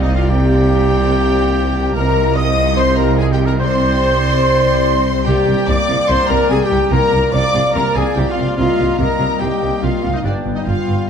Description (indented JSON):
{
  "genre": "cinematic",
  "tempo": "145 BPM",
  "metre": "4/4",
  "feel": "straight",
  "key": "unclear",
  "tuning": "A4 = 442 Hz",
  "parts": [
    { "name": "warm symphonic violin section", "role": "melody", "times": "0.0-11.1 s", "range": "D5 to Eb6", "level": "-25 LUFS", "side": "left 4 dB", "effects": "none" },
    { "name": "hollow flute section", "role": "second line", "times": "0.0-11.1 s", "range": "D5 to Eb6", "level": "-27 LUFS", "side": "right 2 dB", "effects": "none" },
    { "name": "warm clarinet", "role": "second line", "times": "0.0-11.1 s", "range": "D4 to Eb5", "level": "-27 LUFS", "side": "equal", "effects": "none" },
    { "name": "warm oboe", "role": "second line", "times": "0.0-11.1 s", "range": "D4 to Eb5", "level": "-27 LUFS", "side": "right 1 dB", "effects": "none" },
    { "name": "warm symphonic violin section", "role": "second line", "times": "0.0-11.1 s", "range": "D5 to Eb6", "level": "-28 LUFS", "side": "equal", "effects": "none" },
    { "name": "warm studio viola section", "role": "accompaniment", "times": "0.0-11.1 s", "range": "D4 to Eb5", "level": "-24 LUFS", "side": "right 1 dB", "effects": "none" },
    { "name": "clear trombone section", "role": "sustained chords", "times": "0.0-11.1 s", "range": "F3 to B3", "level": "-28 LUFS", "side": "right 4 dB", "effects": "none" },
    { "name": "mellow French horn section", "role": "sustained chords", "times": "0.0-11.1 s", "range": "D4 to Eb5", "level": "-20 LUFS", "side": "left 4 dB", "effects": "none" },
    { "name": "concert harp", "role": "arpeggios", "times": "0.0-11.1 s", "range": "G2 to G5", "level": "-27 LUFS", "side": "left 10 dB", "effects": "none" },
    { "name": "mellow trumpet", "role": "stabs", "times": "0.0-11.1 s", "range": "D5 to G5", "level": "-27 LUFS", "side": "right 2 dB", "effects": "none" },
    { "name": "clear symphonic cello section", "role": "bass", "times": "0.0-11.0 s", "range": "G2 to C3", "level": "-23 LUFS", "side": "right 2 dB", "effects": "none" },
    { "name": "dark tuba", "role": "bass", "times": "0.0-11.0 s", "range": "G1 to C2", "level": "-21 LUFS", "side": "right 2 dB", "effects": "none" },
    { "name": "warm symphonic double bass section", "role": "bass", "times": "0.0-11.0 s", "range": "G1 to C2", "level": "-20 LUFS", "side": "right 2 dB", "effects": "none" }
  ],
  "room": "wet recital hall reverb, RT60 1.5 s",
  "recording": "dark, warm production",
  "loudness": "-13 LUFS",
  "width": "side -7 dB against mid",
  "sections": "0.0-11.1 A section",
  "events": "none",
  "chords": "0.3 Bb/C; 1.9 Ebadd9/C; 3.6 Csus2; 5.3 Gm/C; 6.9 Bb/C; 8.6 Ebadd9/C; 10.2 G"
}